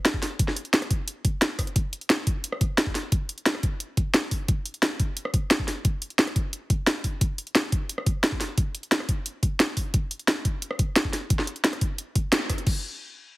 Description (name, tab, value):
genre	drum and bass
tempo	176 BPM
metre	4/4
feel	straight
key	none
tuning	none
part	drum and bass drum kit	drums	0.1-12.7 s	crash cymbal, hi-hat, rim click, snare drum	-24 LUFS	equal	overdrive
part	electronic kick drum	drums	0.1-12.7 s	none	-25 LUFS	equal	overdrive
room	light reverb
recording	heavily compressed radio sound, multiband compression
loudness	-23 LUFS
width	side -19 dB against mid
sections	0.0-12.7 A section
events	drop 0.0-12.7; band accent 12.3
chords	none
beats	0.05 | 0.39 0.73 1.08 1.42 | 1.76 2.10 2.44 2.78 | 3.12 3.46 3.80 4.14 | 4.49 4.83 5.17 5.51 | 5.85 6.19 6.53 6.87 | 7.21 7.55 7.89 8.23 | 8.58 8.92 9.26 9.60 | 9.94 10.28 10.62 10.96 | 11.30 11.64 11.98 12.33 | 12.67